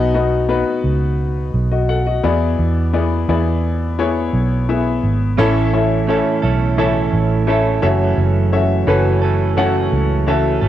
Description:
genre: piano-driven pop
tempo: 86 BPM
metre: 4/4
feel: straight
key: A major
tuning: A4 = 440 Hz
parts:
  - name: clear baby grand piano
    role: accompaniment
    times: 0.0-10.7 s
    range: A2 to F#5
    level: -18 LUFS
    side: left 5 dB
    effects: plate reverb
  - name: vintage muted fingered electric bass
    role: bass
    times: 0.0-10.7 s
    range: F#1 to E2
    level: -18 LUFS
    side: right 1 dB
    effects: transformer saturation
  - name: direct-recorded clean electric guitar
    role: riff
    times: 5.4-10.7 s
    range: F#2 to A4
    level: -19 LUFS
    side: right 8 dB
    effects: none
room: moderate studio reverb, RT60 0.6 s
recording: home recording on cassette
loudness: -14 LUFS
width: side -12 dB against mid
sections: 0.0-10.7 A section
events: none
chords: 0.0 B; 2.2 E7; 5.4 A; 7.8 F#m7

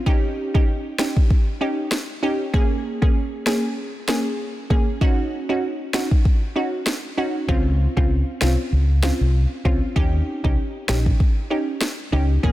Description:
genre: dancehall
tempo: 97 BPM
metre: 4/4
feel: swing 56% on 16ths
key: unclear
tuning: A4 = 439 Hz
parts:
  - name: glassy wavetable pluck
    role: accompaniment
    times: 0.1-12.5 s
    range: Bb3 to Ab4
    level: -24 LUFS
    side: right 1 dB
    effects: chorus
  - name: afro-pop drum kit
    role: drums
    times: 0.1-12.5 s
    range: kick drum, rim click, snare drum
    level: -20 LUFS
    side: equal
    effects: none
  - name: fingered electric bass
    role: bass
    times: 7.5-12.5 s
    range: Bb1 to Eb2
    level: -19 LUFS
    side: equal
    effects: none
room: little or no reverb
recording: dense, heavily limited modern master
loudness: -19 LUFS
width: side -15 dB against mid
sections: 0.0-12.5 A section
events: break 0.0-7.5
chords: 0.1 Eb7; 2.5 Bbm7; 5.0 Ebm7; 7.5 Dbmaj7; 10.0 Eb7

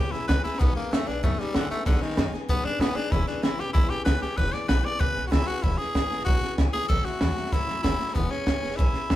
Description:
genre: rockabilly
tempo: 191 BPM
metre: 4/4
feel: straight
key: E major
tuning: A4 = 440 Hz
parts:
  - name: raspy tenor saxophone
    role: melody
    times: 0.0-9.2 s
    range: D3 to D5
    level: -29 LUFS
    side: left 1 dB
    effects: none
  - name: picked steel-string acoustic guitar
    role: accompaniment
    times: 0.0-9.2 s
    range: A2 to G#4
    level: -34 LUFS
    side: left 3 dB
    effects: none
  - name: upright bass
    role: bass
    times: 0.0-9.2 s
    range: E1 to A2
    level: -27 LUFS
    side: equal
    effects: none
  - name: compact cocktail drum kit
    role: drums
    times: 0.1-9.2 s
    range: hi-hat, kick drum, snare drum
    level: -26 LUFS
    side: equal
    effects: none
room: moderate studio reverb, RT60 0.9 s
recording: band playing live in one room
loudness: -23 LUFS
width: side -14 dB against mid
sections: 0.0-5.6 A section; 5.6-9.2 B section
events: tenor saxophone solo 0.0-5.6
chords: 0.0 E6; 0.6 B6; 3.1 E6; 6.9 A6; 8.2 E6

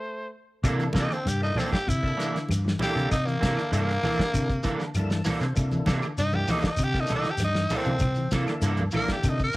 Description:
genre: afrobeat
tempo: 98 BPM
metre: 4/4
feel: straight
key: C mixolydian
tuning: A4 = 440 Hz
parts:
  - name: percussive tonewheel organ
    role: accompaniment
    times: 0.6-9.4 s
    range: Bb3 to A5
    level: -38 LUFS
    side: left 1 dB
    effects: slow rotary speaker, overdrive, cassette tape, plate reverb
  - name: electric guitar at the edge of break-up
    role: stabs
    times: 0.6-9.6 s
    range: E3 to A4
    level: -31 LUFS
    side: right 3 dB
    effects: ensemble chorus, cassette tape, plate reverb, tape echo
  - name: fingered electric bass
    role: bass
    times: 0.6-9.6 s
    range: G2 to C3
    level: -27 LUFS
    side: equal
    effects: none
  - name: damped 70s drum kit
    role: drums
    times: 0.6-9.6 s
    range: hi-hat, kick drum, snare drum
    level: -30 LUFS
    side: equal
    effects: none
  - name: claves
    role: percussion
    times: 0.6-9.4 s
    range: none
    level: -43 LUFS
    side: left 4 dB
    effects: none
  - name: congas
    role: percussion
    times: 0.6-9.1 s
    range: none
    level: -32 LUFS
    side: right 1 dB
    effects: none
  - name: shekere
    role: percussion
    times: 0.6-9.6 s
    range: none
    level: -35 LUFS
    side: left 1 dB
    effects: none
  - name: electric guitar at the edge of break-up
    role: arpeggios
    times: 0.8-9.5 s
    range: C3 to E3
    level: -35 LUFS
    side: left 4 dB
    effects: none
  - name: breathy tenor saxophone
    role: melody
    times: 1.0-9.6 s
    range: Bb3 to Bb4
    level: -29 LUFS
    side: equal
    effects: cassette tape, plate reverb
room: light reverb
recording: home recording on cassette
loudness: -23 LUFS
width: side -19 dB against mid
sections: 0.6-9.6 A section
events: stop 0.0-0.6; tenor saxophone solo 0.6-9.6; tonewheel organ fill 4.6-5.6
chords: 0.0 C5; 0.6 C13

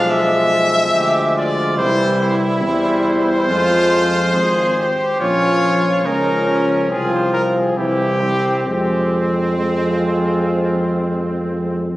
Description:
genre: classical, brass quintet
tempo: 65-72 BPM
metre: 4/4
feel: rubato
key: F minor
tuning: A4 = 440 Hz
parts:
  - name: mellow trumpet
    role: melody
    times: 0.0-11.8 s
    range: F4 to F5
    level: -19 LUFS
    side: left 1 dB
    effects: none
  - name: bright trumpet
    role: second line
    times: 0.0-11.8 s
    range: C4 to Ab4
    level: -25 LUFS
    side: right 2 dB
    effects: none
  - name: clear French horn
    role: accompaniment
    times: 0.0-11.9 s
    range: G3 to Db4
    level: -22 LUFS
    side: equal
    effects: none
  - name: warm trombone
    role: accompaniment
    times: 0.0-11.9 s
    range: E3 to Ab3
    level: -22 LUFS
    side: equal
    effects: none
  - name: mellow tuba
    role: bass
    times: 0.0-11.9 s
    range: Ab1 to F2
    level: -21 LUFS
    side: equal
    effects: none
room: moderate concert hall reverb, RT60 2.4 s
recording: recorded on a phone in the room, studio reverb, compression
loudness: -14 LUFS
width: side -17 dB against mid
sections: 0.0-12.0 A section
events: none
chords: 0.0 Bdim7; 1.8 C; 3.5 Fm; 5.2 Bbm; 6.9 F5/C; 7.8 C; 8.7 Fm

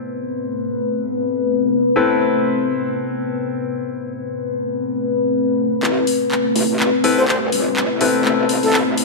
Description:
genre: bass house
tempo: 124 BPM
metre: 4/4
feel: swing 58% on 16ths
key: A minor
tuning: A4 = 439 Hz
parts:
  - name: deep dark ambient pad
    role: sustained chords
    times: 0.0-9.0 s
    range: A3 to B4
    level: -18 LUFS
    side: left 2 dB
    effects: chorus, built-in reverb
  - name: clear concert grand piano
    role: stabs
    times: 0.0-9.0 s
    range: C4 to B4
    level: -22 LUFS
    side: left 4 dB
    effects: low-pass filter, tape echo
  - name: metallic wobble bass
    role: bass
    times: 5.8-9.0 s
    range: G1 to C2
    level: -24 LUFS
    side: equal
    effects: chorus, tube saturation, high-pass filter
  - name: house drum kit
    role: drums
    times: 5.8-9.0 s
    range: handclaps, hi-hat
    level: -22 LUFS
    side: left 1 dB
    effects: overdrive
  - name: breathy jazz flute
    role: melody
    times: 7.2-8.8 s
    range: A4 to C5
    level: -22 LUFS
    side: left 1 dB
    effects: tape echo
room: wet lush hall reverb, RT60 2.0 s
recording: dark, warm production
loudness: -16 LUFS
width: side +0 dB against mid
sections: 0.0-5.8 A section; 5.8-9.0 B section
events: build-up 5.8-9.0; drum fill 5.8-9.0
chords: 0.0 Amadd9

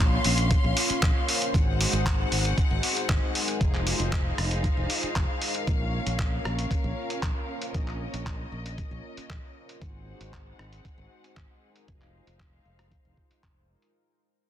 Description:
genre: nu-disco, nu disco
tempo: 116 BPM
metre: 4/4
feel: straight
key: Bb minor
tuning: A4 = 440 Hz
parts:
  - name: warm analog pad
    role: accompaniment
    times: 0.0-13.9 s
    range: Ab3 to Db5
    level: -34 LUFS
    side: equal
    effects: chorus, sidechain pumping, tape echo
  - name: warm symphonic string section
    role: sustained chords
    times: 0.0-13.9 s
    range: C4 to C6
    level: -34 LUFS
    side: left 2 dB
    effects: sidechain pumping, low-pass filter
  - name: modern bright fingered electric bass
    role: bass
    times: 0.0-13.7 s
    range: F1 to Bb1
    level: -30 LUFS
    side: equal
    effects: none
  - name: dusty soul sampler-style drum kit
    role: drums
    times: 0.2-13.9 s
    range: handclaps, hi-hat, rim click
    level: -30 LUFS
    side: equal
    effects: low-pass filter on hats, low-pass filter on perc, soft clipping on snare, low-pass filter on snare, low-pass filter on room
  - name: electronic kick drum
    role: drums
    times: 0.5-13.5 s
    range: none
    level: -26 LUFS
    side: equal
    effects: none
room: digital ambience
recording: dense, heavily limited modern master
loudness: -24 LUFS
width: side -11 dB against mid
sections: 0.0-14.0 A section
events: fade-out 0.0-14.0; filter sweep on drum 0.0-14.0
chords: 0.0 Bbm; 1.5 Ab7; 3.6 Fm7; 5.7 Bbm; 9.8 Ab7; 11.9 Fm7

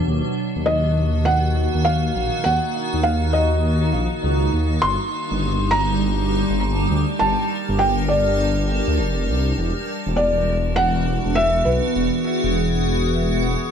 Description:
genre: IDM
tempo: 101 BPM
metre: 4/4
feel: swing 62% on 16ths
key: unclear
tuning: A4 = 442 Hz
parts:
  - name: icy glass pad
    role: sustained chords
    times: 0.0-13.7 s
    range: D#3 to Bb4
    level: -23 LUFS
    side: equal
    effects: chorus, built-in reverb, tremolo, phaser
  - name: dark detuned saw bass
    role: bass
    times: 0.0-13.6 s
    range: E1 to D#2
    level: -21 LUFS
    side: equal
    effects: tube saturation
  - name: felt-muted upright piano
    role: melody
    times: 0.7-13.7 s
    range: B4 to C6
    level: -23 LUFS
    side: equal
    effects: vintage 12-bit sampler grit, tape echo
room: light reverb, small room ambience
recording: none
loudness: -18 LUFS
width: side -7 dB against mid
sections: 0.0-13.7 A section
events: none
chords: 0.1 D#m; 4.8 Gm; 9.6 E7

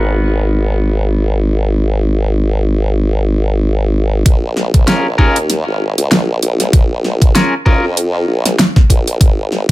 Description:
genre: glitch hop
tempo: 97 BPM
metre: 4/4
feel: swing 56% on 16ths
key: Bb phrygian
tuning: A4 = 440 Hz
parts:
  - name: clean electric guitar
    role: stabs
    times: 0.0-7.8 s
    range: Cb4 to Bb4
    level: -19 LUFS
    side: left 1 dB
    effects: sidechain pumping, low-pass filter, digital delay
  - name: formant-sweep wobble bass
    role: bass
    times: 0.0-9.7 s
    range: Ab1 to F2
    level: -14 LUFS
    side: equal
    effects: chorus, tube saturation, high-pass filter
  - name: electronic kick drum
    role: drums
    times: 4.3-9.7 s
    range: none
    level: -9 LUFS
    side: equal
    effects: overdrive
  - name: pop drum kit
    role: drums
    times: 4.3-9.7 s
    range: hi-hat, snare drum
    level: -14 LUFS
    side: equal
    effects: overdrive
room: little or no reverb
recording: low-pass filter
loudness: -11 LUFS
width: side -18 dB against mid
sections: 0.0-4.3 A section; 4.3-9.7 B section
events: filter sweep on clean electric guitar 0.0-4.3; filter sweep 0.0-4.3; build-up 4.3-9.7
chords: 0.0 Abm7; 4.3 Bbm7; 9.2 N.C.

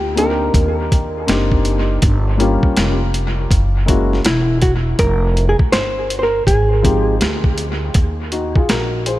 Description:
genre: hip hop, jazz-hop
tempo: 81 BPM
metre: 4/4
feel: swing 66% on 16ths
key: C minor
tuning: A4 = 440 Hz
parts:
  - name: hollow-body jazz guitar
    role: melody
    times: 0.0-7.5 s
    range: E4 to C5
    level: -20 LUFS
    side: right 1 dB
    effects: dub echo
  - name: upright bass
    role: bass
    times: 0.0-9.2 s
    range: E1 to Eb2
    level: -18 LUFS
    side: equal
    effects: none
  - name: dark upright piano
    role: accompaniment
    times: 0.2-9.2 s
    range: F3 to C5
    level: -21 LUFS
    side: left 3 dB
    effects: dub echo
  - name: boom bap sampler-style drum kit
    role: drums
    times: 0.2-9.2 s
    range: hi-hat, kick drum, snare drum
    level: -18 LUFS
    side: equal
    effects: dub echo
room: light reverb, small room ambience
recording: echo-heavy mix, faint mains hum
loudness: -14 LUFS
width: side -16 dB against mid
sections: 0.0-9.2 A section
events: none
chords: 0.0 Cm9; 2.0 Gm7b5; 3.5 F#9; 5.0 Fmadd9; 8.0 Eb5

